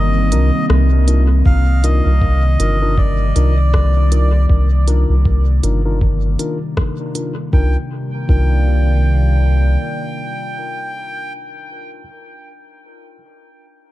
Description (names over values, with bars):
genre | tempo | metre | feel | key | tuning
ambient dub | 79 BPM | 4/4 | swing 58% on 16ths | C minor | A4 = 441 Hz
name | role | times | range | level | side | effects
melodica | melody | 0.0-11.3 s | D5 to G5 | -25 LUFS | right 1 dB | dub echo
warbly tape-like pad | sustained chords | 0.0-11.3 s | C3 to F5 | -23 LUFS | left 1 dB | chorus, built-in reverb
vibraphone with soft mallets | arpeggios | 0.0-1.8 s | C4 to Eb4 | -28 LUFS | right 3 dB | dub echo
soft dub sub bass | bass | 0.0-9.8 s | G1 to C2 | -13 LUFS | equal | none
mellow tine electric piano | stabs | 0.3-12.0 s | D4 to Bb4 | -27 LUFS | left 3 dB | low-pass filter, dub echo
organic electronic drum kit | drums | 0.3-7.3 s | hi-hat, rim click | -26 LUFS | equal | dub echo
electronic kick drum | drums | 1.5-8.5 s | none | -15 LUFS | equal | overdrive
room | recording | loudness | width
little or no reverb | none | -13 LUFS | side -16 dB against mid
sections
0.0-1.5 A section; 1.5-7.5 B section; 7.5-10.6 C section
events
break 0.0-1.5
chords
0.0 Cm11